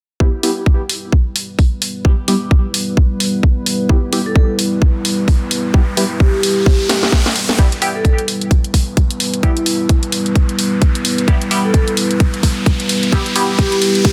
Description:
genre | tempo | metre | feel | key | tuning
bass house | 130 BPM | 4/4 | swing 58% on 16ths | E minor | A4 = 440 Hz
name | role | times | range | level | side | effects
dark analog pad | sustained chords | 0.2-14.1 s | G3 to B4 | -23 LUFS | equal | chorus, sidechain pumping
band-passed chord stab | stabs | 0.2-13.4 s | G3 to G4 | -24 LUFS | equal | phaser, vintage 12-bit sampler grit, sidechain pumping, digital delay
electronic kick drum | drums | 0.2-14.1 s | none | -14 LUFS | equal | none
garage drum kit | drums | 0.4-14.1 s | hi-hat, snare drum | -21 LUFS | equal | none
riser | sound effects | 5.0-14.1 s | none | -28 LUFS | equal | none
vibraphone with medium hard mallets | melody | 4.3-14.1 s | E4 to A4 | -22 LUFS | equal | none
room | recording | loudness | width
light reverb | dense, heavily limited modern master, high-pass filter | -15 LUFS | mono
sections
0.2-7.6 A section; 7.6-14.1 B section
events
riser 5.0-7.6, 7.6-14.1; drum fill 6.9-7.6; build-up 7.6-14.1; filter sweep 7.6-14.1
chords
0.2 Em

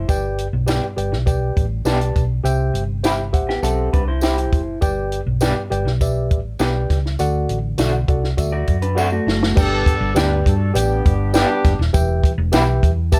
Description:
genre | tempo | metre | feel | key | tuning
uptempo 1960s-style soul | 101 BPM | 4/4 | straight | G major | A4 = 440 Hz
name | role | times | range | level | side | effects
electric guitar through a small old amp | riff | 0.0-4.8, 8.5-9.5 s | A3 to D5 | -27 LUFS | equal | none
hollow-body short-scale fingered electric bass | bass | 0.0-13.2 s | Eb1 to G2 | -23 LUFS | equal | none
tine electric piano | accompaniment | 0.1-13.2 s | G2 to A5 | -25 LUFS | equal | none
compact cocktail drum kit | drums | 0.1-13.2 s | crash cymbal, hi-hat, kick drum, snare drum | -22 LUFS | equal | none
tambourine | percussion | 0.1-13.2 s | none | -38 LUFS | equal | none
electric guitar through a small old amp | stabs | 0.7-12.6 s | A3 to G4 | -25 LUFS | equal | tremolo
mellow horn section | second line | 9.6-11.8 s | B3 to B4 | -26 LUFS | equal | none
room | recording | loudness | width
light reverb | none | -19 LUFS | mono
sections
0.0-9.6 A section; 9.6-13.2 B section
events
drum fill 9.0-9.6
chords
0.1 G; 2.5 C; 4.8 G; 7.2 D; 9.6 G; 11.9 Em

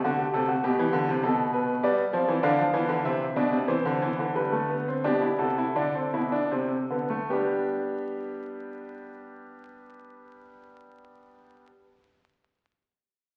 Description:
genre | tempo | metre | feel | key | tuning
classical, baroque-style 3-part fugue for grand piano | 74-101 BPM | 4/4 | straight | G major | A4 = 441 Hz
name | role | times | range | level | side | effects
bright concert grand piano | solo | 0.0-11.7 s | B2 to F5 | -27 LUFS | equal | none
room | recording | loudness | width
wet recital hall reverb, RT60 1.4 s | very old 78 rpm record, vinyl crackle | -27 LUFS | mono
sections
0.0-7.3 A section; 7.3-10.5 B section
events
slowing down 0.6-7.3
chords
0.0 D7; 0.6 G/B; 1.8 G7; 3.1 C; 4.4 G/D; 5.8 D5; 7.3 G

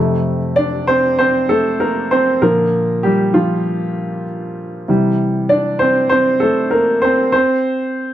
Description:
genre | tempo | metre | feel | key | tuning
pop | 98 BPM | 4/4 | straight | unclear | A4 = 438 Hz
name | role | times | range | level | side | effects
warm upright piano | solo | 0.0-8.1 s | F2 to D5 | -14 LUFS | equal | none
room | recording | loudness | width
moderate studio reverb, RT60 0.7 s | none | -13 LUFS | side -12 dB against mid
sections
0.0-8.1 A section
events
upright piano solo 0.0-8.1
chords
0.0 F; 2.4 Bb; 4.9 Cadd9; 7.3 N.C.

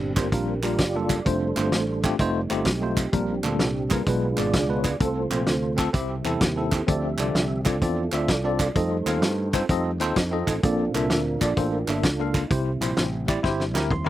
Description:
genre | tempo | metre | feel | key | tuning
uptempo gospel | 128 BPM | 4/4 | swing 66% on 8ths | F major | A4 = 440 Hz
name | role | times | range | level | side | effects
bell-like tine electric piano | accompaniment | 0.0-14.1 s | Bb2 to C6 | -27 LUFS | left 2 dB | fast stereo tremolo
percussive tonewheel organ | sustained chords | 0.0-14.1 s | F3 to E5 | -28 LUFS | right 4 dB | slow rotary speaker, chorus vibrato
fingered electric bass | bass | 0.0-14.1 s | F1 to G2 | -28 LUFS | equal | none
warm soul drum kit | drums | 0.2-14.1 s | hi-hat, kick drum, snare drum, toms | -25 LUFS | equal | none
group handclap | percussion | 0.2-13.8 s | none | -33 LUFS | right 4 dB | none
room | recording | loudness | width
little or no reverb | recorded outdoors, with no room sound | -21 LUFS | side -14 dB against mid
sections
0.0-14.1 A section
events
tonewheel organ solo 0.0-14.1; drum fill 13.4-14.1; tine electric piano fill 13.7-14.1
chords
0.0 Bb6; 1.3 F6; 2.2 F7; 3.1 Bb6; 4.1 Bdim7; 5.0 F; 5.9 C; 6.9 Dm7; 8.8 F7; 10.6 Bbmaj7; 12.5 C

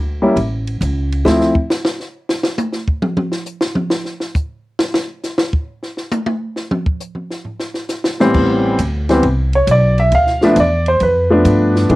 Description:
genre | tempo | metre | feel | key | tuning
jazz piano trio | 135 BPM | 4/4 | swing 68% on 8ths | A minor from 8.3 s | A4 = 441 Hz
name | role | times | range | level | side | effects
upright bass | bass | 0.0-1.5, 8.3-12.0 s | A1 to C3 | -17 LUFS | equal | tube saturation
warm grand piano | melody | 0.2-1.5, 8.2-12.0 s | A2 to F5 | -12 LUFS | equal | cassette tape
compact cocktail drum kit | drums | 0.4-12.0 s | crash cymbal, hi-hat, kick drum, ride cymbal, snare drum, toms | -19 LUFS | equal | cassette tape
room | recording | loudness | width
light reverb | home recording on cassette | -14 LUFS | side -18 dB against mid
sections
0.0-8.3 A section; 8.3-12.0 A section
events
grand piano solo 0.0-12.0; drum solo 1.2-8.3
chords
0.4 A; 1.2 N.C.; 8.3 Am9; 10.1 G7

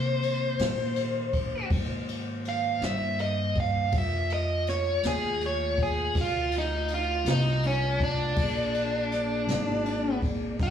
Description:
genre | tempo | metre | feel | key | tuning
slow blues | 54 BPM (dotted quarters) | 12/8 | straight | Bb mixolydian | A4 = 440 Hz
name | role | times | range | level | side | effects
biting overdriven guitar | melody | 0.0-10.7 s | Db4 to F5 | -28 LUFS | equal | slapback echo, tape echo
mellow tonewheel organ | sustained chords | 0.0-10.7 s | Eb3 to D#5 | -35 LUFS | equal | slow rotary speaker
upright bass | bass | 0.0-10.7 s | G1 to C3 | -31 LUFS | equal | none
jazz brush drum kit | drums | 0.2-10.7 s | kick drum, ride cymbal, snare drum | -32 LUFS | equal | none
room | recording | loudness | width
light reverb | live gig heard through the venue's PA, club reverb, small room ambience | -25 LUFS | side -8 dB against mid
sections
0.0-10.7 A section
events
overdriven electric guitar solo 0.0-10.7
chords
0.0 Cm7; 3.9 F7; 8.4 Bb7

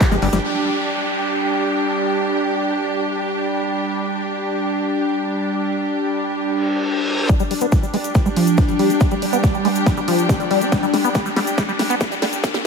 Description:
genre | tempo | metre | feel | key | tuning
psychedelic trance | 140 BPM | 4/4 | straight | unclear | A4 = 440 Hz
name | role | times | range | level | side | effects
evolving wavetable pad | sustained chords | 0.0-12.7 s | G3 to D4 | -23 LUFS | equal | phaser, built-in reverb, sidechain pumping
liquid acid bass | riff | 0.0-0.4, 7.3-12.6 s | F3 to D4 | -21 LUFS | moving between left 7 dB and right 6 dB | phaser, auto-pan, sidechain pumping, digital delay
big-room dance drum kit | drums | 0.0-0.4, 7.3-12.6 s | handclaps, hi-hat, snare drum | -24 LUFS | equal | low-pass filter on hats, low-pass filter on snare
electronic kick drum | drums | 0.0-0.1, 7.3-12.5 s | none | -17 LUFS | equal | none
cabasa | percussion | 0.0-0.4, 7.3-12.6 s | none | -35 LUFS | left 6 dB | none
clear studio string section | texture | 0.0-12.7 s | D4 to G5 | -23 LUFS | right 1 dB | sidechain pumping
downlifter, reverse cymbal and riser | sound effects | 0.4-3.9, 6.6-12.7 s | none | -28 LUFS | left 1 dB | none
room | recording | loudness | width
moderate lush hall reverb, RT60 1.6 s, digital ambience | high-pass filter | -17 LUFS | side -5 dB against mid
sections
0.4-7.3 A section; 7.3-12.7 B section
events
drum fill 0.0-0.4, 7.3-12.7; filter sweep on ambient pad 0.4-7.3; reverse cymbal 6.6-7.3; build-up 7.3-12.7; riser 7.3-12.7; filter sweep on acid bass 7.3-12.7; filter sweep 7.3-12.7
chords
0.4 G5

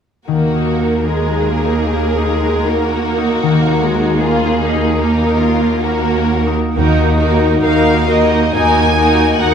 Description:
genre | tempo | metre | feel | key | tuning
classical, slow romantic movement for symphony orchestra | 61-80 BPM | 4/4 | rubato | Eb minor | A4 = 440 Hz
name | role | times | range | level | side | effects
clear symphonic violin section | melody | 0.3-9.5 s | Ab4 to Ab5 | -20 LUFS | left 3 dB | none
rich symphonic violin section | second line | 0.3-9.5 s | Eb4 to Bb4 | -20 LUFS | left 2 dB | none
rich symphonic viola section | accompaniment | 0.3-9.5 s | Ab3 to Eb4 | -18 LUFS | right 2 dB | none
concert harp | arpeggios | 0.3-9.5 s | Eb3 to Bb4 | -20 LUFS | left 4 dB | none
rich symphonic cello section | bass | 0.3-9.5 s | Eb2 | -17 LUFS | right 2 dB | none
rich symphonic double bass section | bass | 6.8-7.5 s | Eb2 | -20 LUFS | right 2 dB | none
room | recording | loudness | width
wet scoring stage reverb, RT60 1.5 s | minimal, uncompressed stereo recording | -12 LUFS | side -7 dB against mid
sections
0.3-6.8 A section; 6.8-9.5 B section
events
none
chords
0.3 Ebm

